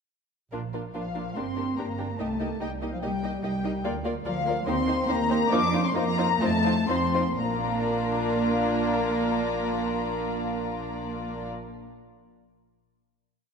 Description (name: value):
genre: quick classical-period movement for symphony orchestra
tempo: 117-148 BPM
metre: 4/4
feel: rubato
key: Bb major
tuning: A4 = 440 Hz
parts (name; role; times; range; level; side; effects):
- warm studio violin section; second line; 0.5-11.5 s; F4 to Eb5; -32 LUFS; left 4 dB; none
- clear chamber viola section; accompaniment; 0.5-11.5 s; Bb3 to F4; -32 LUFS; right 4 dB; none
- dark studio double bass section; bass; 0.5-11.5 s; G1 to F2; -34 LUFS; right 4 dB; none
- dark studio violin section; melody; 0.9-11.4 s; F5 to D6; -31 LUFS; left 5 dB; none
- dark French horn section; sustained chords; 0.9-11.5 s; F3 to D4; -31 LUFS; left 1 dB; none
- dark studio cello section; bass; 0.9-11.5 s; F3 to D4; -34 LUFS; right 1 dB; none
room: wet scoring stage reverb, RT60 2.0 s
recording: none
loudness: -24 LUFS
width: side -6 dB against mid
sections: 0.5-7.4 A section; 7.4-11.3 final chord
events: slowing down 3.0-7.4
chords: 0.5 Bb; 1.4 Gm; 2.2 Cm7; 3.9 Bb/D; 4.7 Cm7/Eb; 5.5 F7sus4; 6.4 F7; 7.4 Bb